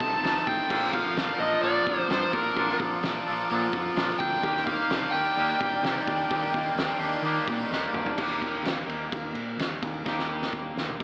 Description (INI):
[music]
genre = indie rock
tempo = 128 BPM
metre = 4/4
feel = straight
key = unclear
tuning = A4 = 440 Hz
[part]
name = dark smooth lead guitar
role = melody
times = 0.0-7.7 s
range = Bb4 to A5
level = -31 LUFS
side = equal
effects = overdrive, slapback echo
[part]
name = glockenspiel with soft plastic mallets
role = second line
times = 0.0-7.7 s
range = Bb5 to A6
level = -37 LUFS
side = equal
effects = none
[part]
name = soft string machine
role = sustained chords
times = 0.0-8.2 s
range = Eb4 to D6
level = -43 LUFS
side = equal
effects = none
[part]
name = overdriven semi-hollow guitar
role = riff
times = 0.0-11.0 s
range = Eb3 to G4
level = -35 LUFS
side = equal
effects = analog chorus, slapback echo
[part]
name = twangy electric guitar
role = riff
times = 0.0-11.0 s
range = Bb2 to A4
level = -34 LUFS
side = equal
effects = subtle chorus
[part]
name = growling fingered electric bass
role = bass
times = 0.0-11.0 s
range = F1 to Eb3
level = -39 LUFS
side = equal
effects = overdrive
[part]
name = loose indie drum kit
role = drums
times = 0.0-11.0 s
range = crash cymbal, hi-hat, kick drum, ride cymbal, snare drum, toms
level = -34 LUFS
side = equal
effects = none
[sound]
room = moderate studio reverb, RT60 0.6 s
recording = AM radio sound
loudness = -27 LUFS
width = mono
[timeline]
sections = 0.0-8.2 A section; 8.2-11.0 B section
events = drum fill 7.7-8.2, 10.1-11.0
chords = 0.0 F7; 0.7 Bbmaj7; 4.4 Ebmaj7